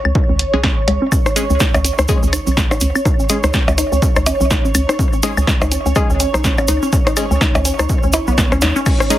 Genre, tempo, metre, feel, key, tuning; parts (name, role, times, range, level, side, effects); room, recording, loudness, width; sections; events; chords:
minimal techno; 124 BPM; 4/4; swing 59% on 16ths; A4 = 440 Hz
granular cloud pad; texture; 0.0-9.2 s; C#4 to C#5; -24 LUFS; right 3 dB; built-in reverb, sidechain pumping
resonant blip pluck; riff; 0.1-9.1 s; G#3 to E4; -22 LUFS; left 1 dB; phaser, sidechain pumping, digital delay
hollow knocking FM bass; bass; 0.1-8.7 s; B1 to D#2; -18 LUFS; equal; sidechain pumping
electronic claves, percussion blips and rim click; percussion; 0.1-9.1 s; -20 LUFS; left 2 dB; dub echo
electronic kick drum; drums; 0.2-9.0 s; -17 LUFS; equal
punchy analog drum machine; drums; 0.4-9.2 s; crash cymbal, hi-hat, snare drum; -19 LUFS; equal
wavetable chord stab; stabs; 0.5-9.2 s; G#3 to G#4; -23 LUFS; left 1 dB; vintage 12-bit sampler grit, dub echo
tube shaker; percussion; 1.1-9.2 s; -26 LUFS; right 2 dB
light reverb; heavily compressed radio sound, multiband compression; -13 LUFS; side -13 dB against mid
0.0-8.9 A section
filter sweep on synth arpeggio sound 0.0-8.9; drum fill 8.6
0.0 C#5